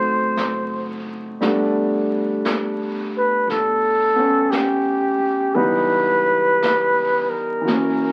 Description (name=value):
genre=jazz ballad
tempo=58 BPM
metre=4/4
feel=swing 66% on 8ths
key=unclear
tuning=A4 = 437 Hz
part: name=breathy flugelhorn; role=melody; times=0.0-8.1 s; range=G4 to C5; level=-21 LUFS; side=equal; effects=none
part: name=warm grand piano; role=accompaniment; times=0.0-8.1 s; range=E3 to Eb4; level=-24 LUFS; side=equal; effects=none
part: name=upright bass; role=bass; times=0.0-8.1 s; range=F#1 to F#2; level=-44 LUFS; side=equal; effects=none
part: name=vintage brush drum kit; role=drums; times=0.4-8.1 s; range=brushed snare drum, hi-hat, snare drum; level=-32 LUFS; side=equal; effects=none
room=wet small room reverb, RT60 0.5 s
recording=very old 78 rpm record, vinyl crackle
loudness=-20 LUFS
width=mono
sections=0.0-8.1 A section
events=none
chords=0.0 D7b9; 1.4 G; 5.6 C#m7b5